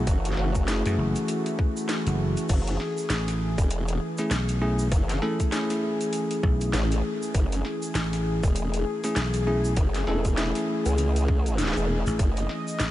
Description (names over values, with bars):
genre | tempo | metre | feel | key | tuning
glitch hop | 99 BPM | 4/4 | swing 59% on 16ths | F# minor | A4 = 440 Hz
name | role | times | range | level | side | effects
warm analog pad | sustained chords | 0.0-12.9 s | E3 to D#5 | -32 LUFS | left 2 dB | chorus, sidechain pumping
bell-like tine electric piano | stabs | 0.0-12.9 s | A3 to A4 | -30 LUFS | equal | sidechain pumping, analog delay
vintage slap bass | bass | 0.0-12.9 s | F#1 to F#2 | -26 LUFS | equal | none
formant-sweep wobble bass | bass | 0.1-12.5 s | E1 to C#2 | -26 LUFS | equal | chorus, overdrive
drum and bass drum kit | drums | 0.1-12.9 s | crash cymbal, hi-hat, snare drum | -33 LUFS | equal | none
electronic kick drum | drums | 0.1-12.3 s | none | -24 LUFS | equal | none
egg shaker | percussion | 0.1-12.9 s | none | -43 LUFS | right 2 dB | none
room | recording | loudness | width
light reverb | vinyl crackle, nothing above 10.6 kHz | -23 LUFS | side -14 dB against mid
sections
0.0-12.9 A section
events
none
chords
0.0 F#m9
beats
| 0.07 0.68 1.28 1.89 | 2.50 3.10 3.71 4.31 | 4.92 5.53 6.13 6.74 | 7.34 7.95 8.56 9.16 | 9.77 10.38 10.98 11.59 | 12.19 12.80